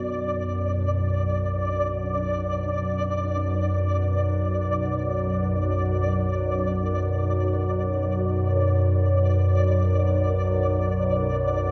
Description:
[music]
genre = dark ambient drone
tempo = free time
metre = none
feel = none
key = B minor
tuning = A4 = 440 Hz
[part]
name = gamelan-type bronze metallophone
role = arpeggios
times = 0.0-5.3 s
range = D3 to F#4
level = -41 LUFS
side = equal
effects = delay
[part]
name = organ-like drone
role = drone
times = 0.0-11.7 s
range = B1 to F#2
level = -25 LUFS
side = equal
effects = ensemble chorus, built-in reverb
[part]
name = flickering grainy texture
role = texture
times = 0.0-11.7 s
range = D5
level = -32 LUFS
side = equal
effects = built-in reverb
[sound]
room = wet cathedral reverb, RT60 5.5 s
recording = none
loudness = -24 LUFS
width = mono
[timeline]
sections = 0.0-11.7 A section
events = none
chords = 0.0 Bm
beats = free time

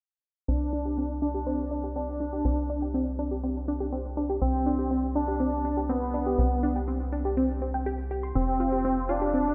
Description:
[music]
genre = techno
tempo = 122 BPM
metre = 4/4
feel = straight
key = unclear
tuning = A4 = 440 Hz
[part]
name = unison lead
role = melody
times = 0.5-9.5 s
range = B3 to D4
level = -32 LUFS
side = equal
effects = subtle chorus, vintage 12-bit sampler grit, digital delay
[part]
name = analog pluck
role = arpeggios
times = 0.5-9.4 s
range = C4 to C6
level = -32 LUFS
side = equal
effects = chorus, digital delay
[part]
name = tight sequencer bass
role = bass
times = 0.5-9.5 s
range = F1 to C2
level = -34 LUFS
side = equal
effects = none
[sound]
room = wet lush hall reverb, RT60 1.8 s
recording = bright 1980s-style digital production, low-pass filter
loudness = -28 LUFS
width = mono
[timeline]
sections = 0.5-9.5 A section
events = filter sweep on synth pluck 0.5-9.5; filter sweep 0.5-9.5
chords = 0.5 Csus2; 8.4 F5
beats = | 0.48 0.97 1.47 1.96 | 2.45 2.94 3.43 3.93 | 4.42 4.91 5.40 5.89 | 6.38 6.88 7.37 7.86 | 8.35 8.84 9.34

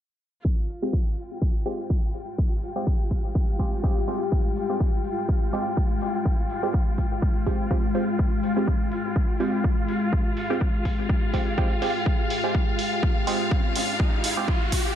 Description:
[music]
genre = bass house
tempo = 124 BPM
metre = 4/4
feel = swing 55% on 16ths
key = F minor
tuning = A4 = 440 Hz
[part]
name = deep dark ambient pad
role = sustained chords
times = 2.3-15.0 s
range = Ab3 to G5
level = -30 LUFS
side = left 2 dB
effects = chorus, built-in reverb, sidechain pumping
[part]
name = electronic kick drum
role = drums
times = 0.4-14.8 s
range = none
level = -23 LUFS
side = equal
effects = overdrive
[part]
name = clear studio string section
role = texture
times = 0.5-15.0 s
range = F4 to G5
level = -31 LUFS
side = left 2 dB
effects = sidechain pumping
[part]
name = electronic hi-hat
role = drums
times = 0.7-14.8 s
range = none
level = -33 LUFS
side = right 3 dB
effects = overdrive
[part]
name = band-passed chord stab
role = stabs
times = 0.8-14.5 s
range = Ab3 to G4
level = -30 LUFS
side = right 2 dB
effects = phaser, sidechain pumping, ping-pong delay
[part]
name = riser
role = sound effects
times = 13.1-15.0 s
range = none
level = -32 LUFS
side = equal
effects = none
[sound]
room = light reverb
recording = low-pass filter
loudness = -22 LUFS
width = side -10 dB against mid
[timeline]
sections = 0.4-15.0 A section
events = filter sweep 0.4-15.0; riser 13.1-15.0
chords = 0.4 Fmadd9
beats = | 0.45 0.93 1.42 1.90 | 2.38 2.87 3.35 3.84 | 4.32 4.80 5.29 5.77 | 6.25 6.74 7.22 7.71 | 8.19 8.68 9.16 9.64 | 10.13 10.61 11.09 11.58 | 12.06 12.55 13.03 13.51 | 14.00 14.48

